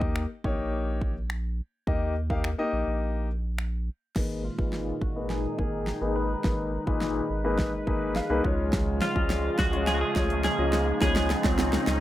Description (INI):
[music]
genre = dance-pop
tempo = 105 BPM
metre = 4/4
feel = straight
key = G# dorian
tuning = A4 = 439 Hz
[part]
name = warm concert grand piano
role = accompaniment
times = 0.0-11.8 s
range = A#2 to A#5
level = -30 LUFS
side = left 3 dB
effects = sidechain pumping, low-pass filter
[part]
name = warm sub bass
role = bass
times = 0.0-12.0 s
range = G#1 to D#2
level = -30 LUFS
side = equal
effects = sidechain pumping
[part]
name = pop drum kit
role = drums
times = 0.0-12.0 s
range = crash cymbal, finger snaps, hi-hat, kick drum, snare drum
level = -29 LUFS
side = equal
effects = none
[part]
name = sweeping resonant pad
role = sustained chords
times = 4.2-12.0 s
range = A#2 to B4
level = -32 LUFS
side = equal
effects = chorus, sidechain pumping, low-pass filter
[part]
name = riser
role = sound effects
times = 6.8-12.0 s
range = none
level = -36 LUFS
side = right 1 dB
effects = none
[part]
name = twelve-string electric guitar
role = melody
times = 4.4-12.0 s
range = E#4 to B4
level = -32 LUFS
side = right 1 dB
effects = spring reverb, low-pass filter, ping-pong delay
[sound]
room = light reverb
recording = rough home demo mix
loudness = -25 LUFS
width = side -14 dB against mid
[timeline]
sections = 0.0-4.2 A section; 4.2-12.0 B section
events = break 3.0-4.2; build-up 4.2-12.0; drum fill 4.2-12.0; filter sweep 4.2-12.0; riser 6.8-12.0; grand piano fill 7.6-8.7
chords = 0.0 D#; 4.2 G#madd9; 8.4 C#